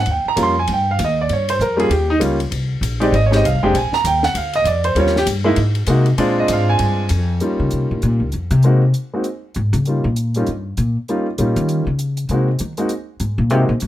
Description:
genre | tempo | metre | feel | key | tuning
jazz piano trio | 196 BPM | 4/4 | swing 61% on 8ths | Eb mixolydian | A4 = 439 Hz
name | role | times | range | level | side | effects
warm concert grand piano | melody | 0.0-13.7 s | G3 to C6 | -18 LUFS | right 1 dB | none
upright bass | bass | 0.0-13.9 s | F1 to Eb3 | -18 LUFS | left 1 dB | none
compact cocktail drum kit | drums | 0.1-13.9 s | hi-hat, ride cymbal, snare drum | -29 LUFS | left 3 dB | none
room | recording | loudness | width
light reverb | none | -15 LUFS | side -13 dB against mid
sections
0.0-7.4 A section; 7.4-13.9 A section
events
grand piano solo 0.0-7.4; upright bass solo 7.4-13.9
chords
0.1 Eb7; 2.5 Fm7 (rootless); 3.7 Bb; 5.0 Eb7; 5.6 Ab9; 6.2 Bb7; 7.4 Eb7; 8.6 Ab7; 9.9 Eb7; 12.3 Ab7

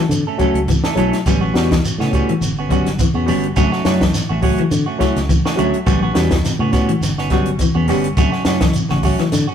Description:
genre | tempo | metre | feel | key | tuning
afrobeat | 104 BPM | 4/4 | swing 54% on 16ths | A mixolydian | A4 = 441 Hz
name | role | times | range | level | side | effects
overdriven reed electric piano | accompaniment | 0.0-9.2 s | F#3 to G4 | -23 LUFS | left 1 dB | phaser
semi-hollow electric guitar | arpeggios | 0.0-9.4 s | C#3 to G3 | -21 LUFS | left 5 dB | none
semi-hollow electric guitar | stabs | 0.0-9.5 s | F#3 to A4 | -22 LUFS | right 6 dB | slapback echo
fingered electric bass | bass | 0.1-9.4 s | G1 to D3 | -20 LUFS | equal | none
compact cocktail drum kit | drums | 0.1-9.5 s | hi-hat, kick drum, snare drum | -20 LUFS | right 1 dB | none
shekere | percussion | 0.1-9.5 s | none | -26 LUFS | right 2 dB | none
room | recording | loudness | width
moderate stone room reverb, RT60 1.4 s | rough rehearsal-room recording | -14 LUFS | side -8 dB against mid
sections
0.0-9.5 A section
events
none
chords
0.0 Dmaj7; 1.3 A13; 3.6 Dmaj7; 5.9 A13; 8.2 Dmaj7

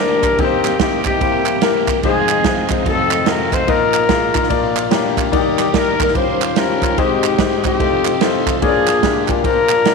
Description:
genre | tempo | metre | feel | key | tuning
uptempo gospel | 146 BPM | 4/4 | swing 63% on 8ths | unclear | A4 = 440 Hz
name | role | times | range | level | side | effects
mellow horn section | melody | 0.0-9.9 s | Bb3 to C5 | -17 LUFS | left 3 dB | none
warm grand piano | accompaniment | 0.0-9.9 s | F1 to Bb5 | -19 LUFS | left 10 dB | none
tonewheel organ | sustained chords | 0.0-9.9 s | Eb3 to F5 | -25 LUFS | right 12 dB | fast rotary speaker, overdrive, chorus vibrato
swinging big-band drum kit | drums | 0.2-9.9 s | kick drum, ride cymbal, snare drum | -20 LUFS | right 6 dB | none
group handclap | percussion | 0.2-9.8 s | none | -25 LUFS | right 15 dB | none
room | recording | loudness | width
moderate echo chamber reverb, RT60 2.2 s | 1960s-style stereo with parts hard left and right | -13 LUFS | side -4 dB against mid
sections
0.0-9.9 A section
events
grand piano fill 4.7-5.3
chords
0.4 Cm7/Eb; 1.2 C7; 2.0 Fm7; 2.9 F7b9; 3.7 Bbsus4; 4.5 Bb; 5.3 Ebmaj7; 6.2 Eb13; 7.0 Abmaj7; 7.8 F7; 8.6 Bb

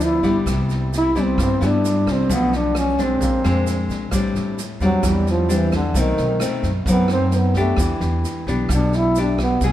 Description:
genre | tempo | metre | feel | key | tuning
bossa nova | 131 BPM | 4/4 | straight | A minor | A4 = 441 Hz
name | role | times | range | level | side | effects
warm trombone | melody | 0.0-9.6 s | D3 to E4 | -21 LUFS | right 1 dB | none
nylon-string guitar | accompaniment | 0.0-9.7 s | F#2 to G#4 | -22 LUFS | left 2 dB | none
upright bass | bass | 0.0-9.7 s | G1 to G2 | -22 LUFS | equal | none
swinging big-band drum kit | drums | 0.0-9.7 s | kick drum, rim click, snare drum | -27 LUFS | right 1 dB | none
tube shaker | percussion | 0.0-9.7 s | none | -36 LUFS | right 7 dB | none
room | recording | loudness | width
moderate echo chamber reverb, RT60 2.0 s | heard from further back in the room | -17 LUFS | side -12 dB against mid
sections
0.0-4.1 A section; 4.1-9.7 B section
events
trombone solo 4.1-9.7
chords
0.5 Cmaj7; 2.3 Bm7b5; 3.2 Bb9; 4.1 Am7; 6.0 B7b9; 7.8 Em7

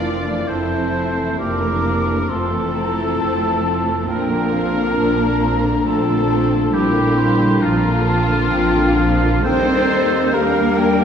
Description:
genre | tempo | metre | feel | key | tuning
cinematic, emotional film score for orchestra | 67 BPM | 3/4 | rubato | unclear | A4 = 440 Hz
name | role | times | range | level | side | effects
muted symphonic violin section | melody | 0.0-11.0 s | Bb3 to F4 | -27 LUFS | left 4 dB | none
clear oboe | second line | 0.0-11.0 s | F4 to D5 | -25 LUFS | right 2 dB | none
concert flute | second line | 0.0-11.0 s | Eb5 to D6 | -26 LUFS | left 1 dB | none
mellow clarinet | second line | 0.0-11.0 s | D4 to Bb4 | -25 LUFS | left 1 dB | none
muted symphonic violin section | second line | 0.0-11.0 s | F4 to D5 | -24 LUFS | left 2 dB | none
muted studio viola section | accompaniment | 0.0-11.0 s | D3 to C4 | -25 LUFS | right 2 dB | none
mellow French horn section | sustained chords | 0.0-11.0 s | G3 to E4 | -23 LUFS | left 2 dB | none
muted symphonic cello section | bass | 0.0-11.0 s | F3 to D4 | -25 LUFS | right 2 dB | none
muted symphonic double bass section | bass | 0.0-11.0 s | F1 to Eb2 | -23 LUFS | right 2 dB | none
room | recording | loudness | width
wet scoring stage reverb, RT60 1.5 s | heard from further back in the room | -15 LUFS | side -8 dB against mid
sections
0.0-11.0 A section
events
none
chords
0.0 Fmaj7; 4.1 Bbadd9; 9.5 Ebmaj7

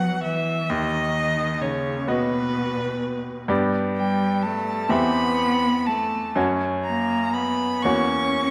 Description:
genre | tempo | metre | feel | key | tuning
classical, slow romantic movement for piano trio | 40-44 BPM (dotted quarters) | 6/8 | rubato | B major | A4 = 440 Hz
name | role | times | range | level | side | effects
warm violin | melody | 0.0-8.5 s | B4 to C#6 | -28 LUFS | equal | none
warm cello | second line | 0.0-8.5 s | B2 to C#4 | -28 LUFS | equal | none
bright baby grand piano | accompaniment | 0.0-8.5 s | D#2 to E5 | -27 LUFS | equal | none
room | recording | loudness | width
wet scoring stage reverb, RT60 1.6 s | none | -23 LUFS | mono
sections
0.0-8.5 A section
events
none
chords
0.0 B; 0.7 B/D#; 3.5 G; 4.9 C/E; 6.4 F#5; 7.8 F#7/E

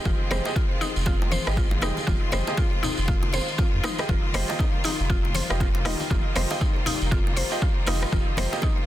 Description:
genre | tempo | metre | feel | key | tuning
afro house | 119 BPM | 4/4 | swing 59% on 16ths | F minor | A4 = 441 Hz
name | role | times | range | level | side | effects
bright studio string section | sustained chords | 0.0-8.9 s | Eb3 to F4 | -32 LUFS | left 2 dB | sidechain pumping
felt-muted upright piano | stabs | 0.0-8.6 s | F4 to Eb5 | -33 LUFS | right 3 dB | sidechain pumping, digital delay
mallet-like synth pluck | arpeggios | 0.1-8.8 s | Eb4 to C5 | -31 LUFS | left 2 dB | chorus, sidechain pumping, digital delay
warm sub bass | bass | 0.1-8.5 s | Eb1 to F2 | -27 LUFS | equal | sidechain pumping
electronic kick drum | drums | 0.1-8.7 s | none | -24 LUFS | equal | overdrive, small room reverb
bongos | percussion | 0.1-8.7 s | none | -37 LUFS | right 1 dB | none
congas | percussion | 0.1-8.9 s | none | -36 LUFS | left 3 dB | none
tambourine | percussion | 0.1-8.7 s | none | -37 LUFS | right 2 dB | none
deep house drum kit | drums | 0.3-8.5 s | hi-hat, rim click, toms | -32 LUFS | right 1 dB | overdrive, small room reverb
room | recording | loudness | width
small room ambience | dense, heavily limited modern master | -22 LUFS | side -13 dB against mid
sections
0.0-8.9 A section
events
none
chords
0.0 Fm7; 4.1 Ebadd9

